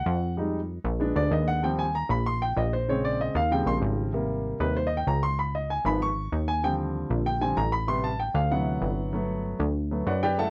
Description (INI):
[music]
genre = Afro-Cuban jazz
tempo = 192 BPM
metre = 4/4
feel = straight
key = unclear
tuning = A4 = 441 Hz
[part]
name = warm baby grand piano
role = accompaniment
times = 0.0-10.5 s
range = C3 to Db6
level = -29 LUFS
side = equal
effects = none
[part]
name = plucky analog bass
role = bass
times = 0.0-10.5 s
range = G1 to F#2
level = -30 LUFS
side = equal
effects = none
[sound]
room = light reverb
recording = worn, warbling old tape, cassette tape, warbly pitch drift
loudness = -27 LUFS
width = mono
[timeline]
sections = 0.0-4.1 A section; 4.1-10.5 A section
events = grand piano solo 0.0-10.5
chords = 0.4 Fm7; 1.0 Bb7b9; 1.6 Eb69; 2.9 Bbm7; 3.5 Eb13; 4.1 Abmaj9; 5.4 Db9; 6.6 Ebmaj13; 7.9 Am7; 8.5 D13; 9.1 Gmaj9